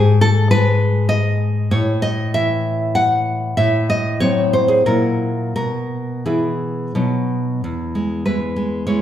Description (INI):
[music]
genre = romantic piece for solo classical guitar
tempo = 84-103 BPM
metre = 3/4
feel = rubato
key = E major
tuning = A4 = 440 Hz
[part]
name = nylon-string guitar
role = solo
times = 0.0-9.0 s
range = E2 to F#5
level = -16 LUFS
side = left 1 dB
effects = none
[sound]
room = wet large studio reverb, RT60 1.2 s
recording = band playing live in one room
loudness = -16 LUFS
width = side -10 dB against mid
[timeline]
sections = 0.0-7.6 A section; 7.6-9.0 B section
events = none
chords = 0.0 N.C.; 1.7 F#m7/A; 3.6 F#dim/A; 4.9 F#7/A#; 5.6 E/B; 7.0 B; 7.6 E